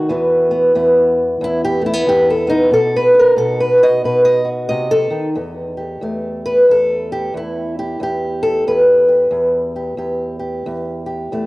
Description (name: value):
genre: acoustic country blues, solo or duo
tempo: 91 BPM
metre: 4/4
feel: swing 62% on 8ths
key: E minor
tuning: A4 = 440 Hz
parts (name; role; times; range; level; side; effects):
- fingerpicked old ladder-braced acoustic guitar; solo; 0.0-11.5 s; E2 to D#5; -13 LUFS; equal; none
room: moderate spring reverb, RT60 2.3 s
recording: home recording on cassette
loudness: -13 LUFS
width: side -20 dB against mid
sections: 0.0-5.4 A section; 5.4-11.5 B section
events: steel-string acoustic guitar solo 0.0-5.4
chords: 0.1 E5; 2.7 B; 5.4 Em